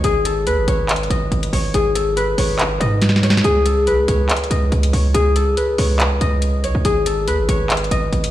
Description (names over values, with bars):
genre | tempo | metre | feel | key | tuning
hip hop, trap | 141 BPM | 4/4 | half-time | unclear | A4 = 436 Hz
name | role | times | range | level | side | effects
concert harp | melody | 0.0-8.3 s | G#4 to D#5 | -19 LUFS | left 2 dB | low-pass filter, tape echo
hard-hitting 808-style bass | bass | 0.0-8.3 s | G#1 to G#2 | -18 LUFS | right 1 dB | none
booming analog drum machine | drums | 0.0-8.3 s | handclaps, hi-hat, snare drum | -22 LUFS | equal | none
room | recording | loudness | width
digital ambience | played on a big sound system in a bare room, large studio reverb | -15 LUFS | side -13 dB against mid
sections
0.0-8.3 A section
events
drum fill 3.0-3.4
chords
0.0 G#5; 3.4 B9; 6.8 G#5